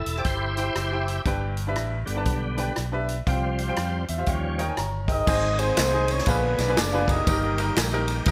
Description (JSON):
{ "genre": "uptempo gospel", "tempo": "120 BPM", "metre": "4/4", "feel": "swing 63% on 8ths", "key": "Ab major from 5.3 s", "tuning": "A4 = 441 Hz", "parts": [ { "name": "bright upright piano", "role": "accompaniment", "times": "0.0-8.3 s", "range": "G2 to Bb5", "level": "-32 LUFS", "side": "equal", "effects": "none" }, { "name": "bright tonewheel organ", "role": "sustained chords", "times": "0.0-8.3 s", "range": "D3 to D5", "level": "-34 LUFS", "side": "equal", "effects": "slow rotary speaker, overdrive, chorus vibrato" }, { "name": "fingered electric bass", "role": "bass", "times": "0.0-8.3 s", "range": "E1 to F2", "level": "-31 LUFS", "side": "equal", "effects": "none" }, { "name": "swinging big-band drum kit", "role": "drums", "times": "0.1-8.3 s", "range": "crash cymbal, hi-hat, kick drum, ride cymbal, rim click, snare drum", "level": "-30 LUFS", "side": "equal", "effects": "none" }, { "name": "mellow horn section", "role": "melody", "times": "5.1-8.0 s", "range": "Cb4 to Eb5", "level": "-28 LUFS", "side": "equal", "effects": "delay" }, { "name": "tambourine and handclaps", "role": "percussion", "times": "5.3-8.3 s", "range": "none", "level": "-36 LUFS", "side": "equal", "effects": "none" } ], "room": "moderate plate reverb, RT60 1.7 s", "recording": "bright 1980s-style digital production", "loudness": "-25 LUFS", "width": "mono", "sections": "0.0-5.3 A section; 5.3-8.3 B section", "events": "tonewheel organ solo 0.0-5.3; upright piano fill 3.8-5.3", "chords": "0.0 C/E; 1.3 G; 3.3 Csus4; 4.3 Eb7; 5.3 Ab; 6.3 Bb7b9; 7.3 Eb/G", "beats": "0.25 0.76 | 1.26 1.76 2.26 2.77 | 3.27 3.77 4.27 4.78 | 5.28 5.78 6.27 6.77 | 7.27 7.77 8.27" }